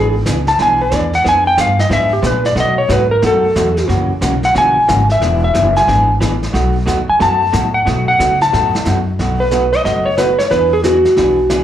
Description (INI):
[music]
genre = country, western swing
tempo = 181 BPM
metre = 4/4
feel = swing 64% on 8ths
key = B mixolydian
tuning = A4 = 444 Hz
[part]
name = clean lap steel guitar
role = melody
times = 0.0-11.6 s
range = F#4 to A5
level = -13 LUFS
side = equal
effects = plate reverb, slapback echo
[part]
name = vintage hollow-body jazz guitar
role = accompaniment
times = 0.0-11.6 s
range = B2 to G#4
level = -19 LUFS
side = right 2 dB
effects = plate reverb, slapback echo
[part]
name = upright bass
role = bass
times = 0.0-11.6 s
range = E1 to C#3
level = -18 LUFS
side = equal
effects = none
[part]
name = vintage brush drum kit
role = drums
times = 0.3-11.6 s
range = brushed snare drum, hi-hat, snare drum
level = -24 LUFS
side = left 1 dB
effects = slapback echo
[sound]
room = moderate club reverb, RT60 0.6 s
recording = live gig heard through the venue's PA, club reverb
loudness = -11 LUFS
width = side -10 dB against mid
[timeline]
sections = 0.0-9.2 A section; 9.2-11.6 B section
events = electric slide guitar solo 0.0-9.2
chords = 0.0 E7; 1.2 Fdim7; 2.6 B7; 3.9 F#9; 5.2 E9; 6.5 B9; 9.2 B7; 10.5 E9